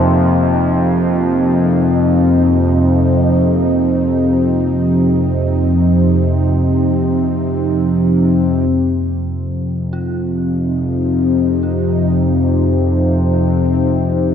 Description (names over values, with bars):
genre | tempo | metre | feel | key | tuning
dark ambient drone | free time | none | none | unclear | A4 = 440 Hz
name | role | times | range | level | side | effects
sweeping resonant pad | sustained chords | 0.0-14.3 s | F3 to Eb4 | -17 LUFS | right 1 dB | chorus
analog drone | drone | 0.0-14.3 s | F2 to C3 | -14 LUFS | left 1 dB | chorus, phaser
bronze singing bowl | texture | 0.0-8.7 s | Bb3 to Bb4 | -32 LUFS | left 3 dB | none
dark detuned synth bell | arpeggios | 9.9-14.3 s | F4 | -35 LUFS | right 2 dB | chorus, phaser, tape echo
room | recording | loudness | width
wet plate reverb, RT60 2.9 s | echo-heavy mix | -12 LUFS | side -8 dB against mid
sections
0.0-8.7 A section; 8.7-14.3 B section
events
none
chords
0.0 F5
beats
free time